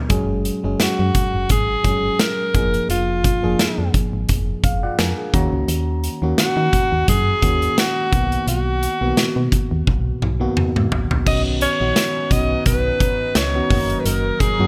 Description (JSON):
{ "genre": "1980s-style pop", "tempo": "86 BPM", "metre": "4/4", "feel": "swing 55% on 16ths", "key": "unclear", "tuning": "A4 = 445 Hz", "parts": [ { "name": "FM electric piano", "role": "accompaniment", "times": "0.0-14.7 s", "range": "D3 to A#5", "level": "-27 LUFS", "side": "equal", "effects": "none" }, { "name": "solid FM bass", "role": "bass", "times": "0.1-14.7 s", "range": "E#1 to D#3", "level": "-24 LUFS", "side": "equal", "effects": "none" }, { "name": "big rock drum kit", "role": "drums", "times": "0.1-14.6 s", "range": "crash cymbal, hi-hat, kick drum, snare drum, toms", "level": "-23 LUFS", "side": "equal", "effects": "none" }, { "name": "bright alto saxophone", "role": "melody", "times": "0.8-14.7 s", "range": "E#4 to D#5", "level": "-23 LUFS", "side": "equal", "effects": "none" }, { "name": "lush unison pad", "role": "sustained chords", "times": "11.3-14.7 s", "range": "F#3 to A#4", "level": "-33 LUFS", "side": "equal", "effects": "chorus" } ], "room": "light reverb", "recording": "none", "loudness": "-19 LUFS", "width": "mono", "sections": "0.0-11.3 A section; 11.3-14.7 B section", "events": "FM electric piano fill 4.3-5.7; drum fill 9.9-11.3", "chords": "0.1 F#sus2; 2.5 A#7/E#; 5.3 D#m7; 8.1 Bmaj7; 11.3 Badd9; 13.7 F#6" }